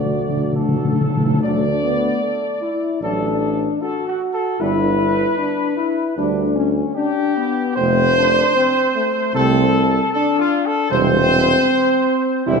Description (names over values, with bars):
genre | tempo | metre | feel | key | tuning
classical, ceremonial fanfare | 76 BPM | 4/4 | straight | D major | A4 = 438 Hz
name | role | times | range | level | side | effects
mellow trumpet section | melody | 0.0-12.6 s | F4 to D5 | -19 LUFS | equal | none
clear trombone section | sustained chords | 0.0-12.6 s | C3 to D4 | -26 LUFS | right 5 dB | none
mellow French horn section | sustained chords | 0.0-12.6 s | A3 to F#4 | -21 LUFS | left 2 dB | none
warm tuba | bass | 0.0-12.6 s | E1 to D2 | -22 LUFS | right 3 dB | none
timpani | percussion | 0.0-1.4 s | D3 | -20 LUFS | left 2 dB | none
room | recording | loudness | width
wet scoring stage reverb, RT60 1.5 s | dark, warm production | -15 LUFS | side -5 dB against mid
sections
0.0-1.4 A section; 1.4-12.6 B section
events
timpani fill 0.0-1.4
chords
0.0 D; 4.6 G; 7.8 F; 10.9 C/E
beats
0.56 | 1.42 2.22 3.01 3.81 | 4.60 5.38 6.17 6.96 | 7.77 8.56 9.34 10.13 | 10.91 11.68 12.46